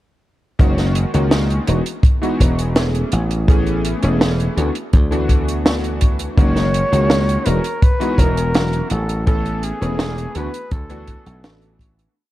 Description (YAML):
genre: vaporwave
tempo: 83 BPM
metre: 4/4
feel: straight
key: unclear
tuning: A4 = 440 Hz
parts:
  - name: clear electric grand piano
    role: accompaniment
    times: 0.6-12.1 s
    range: D#3 to A4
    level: -22 LUFS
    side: left 1 dB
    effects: analog chorus, analog delay
  - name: dry thumbed slap bass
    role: bass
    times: 0.6-12.1 s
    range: E1 to D2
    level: -19 LUFS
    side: equal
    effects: tube saturation
  - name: compact cocktail drum kit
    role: drums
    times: 0.6-12.1 s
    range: hi-hat, snare drum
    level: -21 LUFS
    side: right 1 dB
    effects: studio reverb
  - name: kick drum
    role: drums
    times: 0.6-11.9 s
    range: none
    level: -14 LUFS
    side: equal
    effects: studio reverb
  - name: clear flugelhorn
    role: melody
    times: 6.4-11.8 s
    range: G#4 to C#5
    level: -23 LUFS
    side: equal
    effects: vintage 12-bit sampler grit, analog delay
room: little or no reverb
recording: dark, warm production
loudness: -15 LUFS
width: side -15 dB against mid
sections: 0.6-12.2 groove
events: fade-out 8.3-12.2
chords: 0.6 F#69; 1.7 Emaj9; 3.1 Amaj9; 4.6 D69; 6.4 F#69; 7.5 Emaj9; 8.9 Amaj9; 10.4 D69